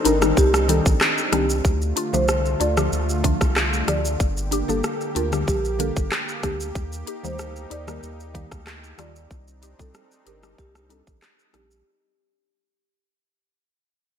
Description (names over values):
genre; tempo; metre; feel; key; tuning
dancehall; 94 BPM; 4/4; straight; unclear; A4 = 442 Hz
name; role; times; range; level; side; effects
mallet-like synth pluck; accompaniment; 0.0-11.7 s; D3 to Bb4; -26 LUFS; left 2 dB; chorus, phaser
warm analog pad; sustained chords; 0.0-11.8 s; D3 to G4; -31 LUFS; right 1 dB; chorus, sidechain pumping
marimba with soft mallets; melody; 0.1-11.7 s; G4 to D5; -26 LUFS; right 1 dB; ping-pong delay
saturated sub bass; bass; 0.1-11.8 s; G1 to Eb2; -26 LUFS; equal; none
island pop drum kit; drums; 0.1-11.8 s; handclaps, hi-hat, kick drum, rim click, shaker; -23 LUFS; equal; gated reverb
room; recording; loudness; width
light reverb, digital ambience; bright 1980s-style digital production; -19 LUFS; side -8 dB against mid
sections
0.0-11.9 A section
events
fade-out 0.0-11.9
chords
0.0 Cmadd9; 1.6 Dm; 4.2 Gm; 6.8 Eb; 9.3 Cmadd9